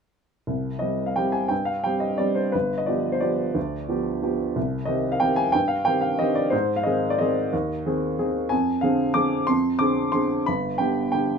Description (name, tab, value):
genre	classical, piano waltz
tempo	180 BPM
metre	3/4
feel	uneven beats, rubato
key	C minor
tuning	A4 = 441 Hz
part	warm upright piano	solo	0.5-11.4 s	G1 to D6	-21 LUFS	equal	none
room	moderate small room ambience, RT60 0.5 s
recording	none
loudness	-21 LUFS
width	side -6 dB against mid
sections	0.5-11.4 A section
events	none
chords	0.5 C5; 2.5 G7; 4.6 Cm; 6.5 Ab; 8.5 Dm7b5/F; 10.5 G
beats	| 0.48 0.82 1.17 | 1.51 1.85 2.20 | 2.54 2.87 3.22 | 3.55 3.89 4.23 | 4.56 4.89 5.22 | 5.55 5.87 6.21 | 6.53 6.85 7.19 | 7.52 7.85 8.19 | 8.52 8.83 9.16 | 9.49 9.81 10.14 | 10.47 10.80 11.14